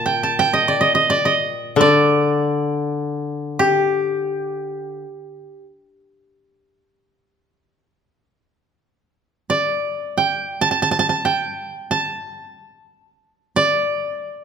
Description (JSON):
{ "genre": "japanese traditional, Japanese chamber music", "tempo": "free time", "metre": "none", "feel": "none", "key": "G hirajoshi", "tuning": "A4 = 440 Hz", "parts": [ { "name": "koto", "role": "melody", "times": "0.0-5.6, 9.5-14.4 s", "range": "G4 to A5", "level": "-18 LUFS", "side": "right 1 dB", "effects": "none" }, { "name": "koto", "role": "accompaniment", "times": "0.0-5.0 s", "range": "Bb2 to D3", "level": "-21 LUFS", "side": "left 3 dB", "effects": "none" } ], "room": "moderate recital hall reverb, RT60 1.5 s", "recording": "none", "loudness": "-17 LUFS", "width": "side -7 dB against mid", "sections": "0.0-8.4 A section; 8.4-14.4 A section", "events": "none", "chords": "none" }